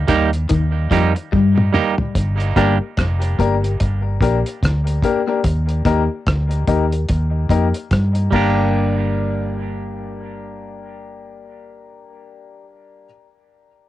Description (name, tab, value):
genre	dub reggae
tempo	73 BPM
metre	4/4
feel	swing 59% on 16ths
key	G minor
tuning	A4 = 441 Hz
part	vintage muted fingered electric bass	bass	0.0-13.1 s	F1 to G2	-18 LUFS	equal	none
part	semi-hollow electric guitar	accompaniment	0.1-2.8, 8.3-13.1 s	G3 to G4	-22 LUFS	right 6 dB	dub echo
part	electric guitar through a small old amp	riff	0.1-1.6 s	Eb3 to G3	-23 LUFS	left 6 dB	wide subtle chorus, dub echo
part	cloth-damped thuddy drum kit	drums	0.1-8.6 s	crash cymbal, hi-hat, kick drum, rim click, toms	-21 LUFS	equal	cassette tape
part	warm upright piano	stabs	2.6-13.1 s	Bb3 to Bb4	-22 LUFS	left 6 dB	dub echo
room	light reverb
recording	home recording on cassette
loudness	-15 LUFS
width	side -14 dB against mid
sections	0.0-2.1 A section; 2.1-8.7 B section; 8.7-12.0 C section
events	break 0.0-2.1; drum fill 1.3-2.1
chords	0.0 Eb; 2.1 Gm; 5.4 Eb; 8.3 Gm